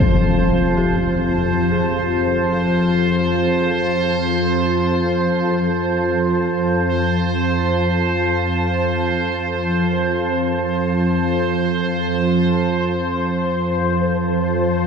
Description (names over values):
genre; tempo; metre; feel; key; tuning
dark ambient drone; free time; none; none; F harmonic minor; A4 = 442 Hz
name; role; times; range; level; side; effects
dark detuned synth bell; arpeggios; 0.0-14.9 s; E4 to Bb4; -36 LUFS; equal; none
organ-like drone; drone; 0.0-14.9 s; F2 to F3; -18 LUFS; equal; ensemble chorus, built-in reverb
bubbling stepped-filter texture; texture; 0.0-14.9 s; C5; -22 LUFS; right 3 dB; chorus, built-in reverb
room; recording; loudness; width
wet huge ambient reverb, RT60 7.4 s; cassette tape; -16 LUFS; side -6 dB against mid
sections
0.0-12.5 A section; 12.5-14.9 B section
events
none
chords
0.0 Fm; 2.5 Fmadd11; 12.5 F5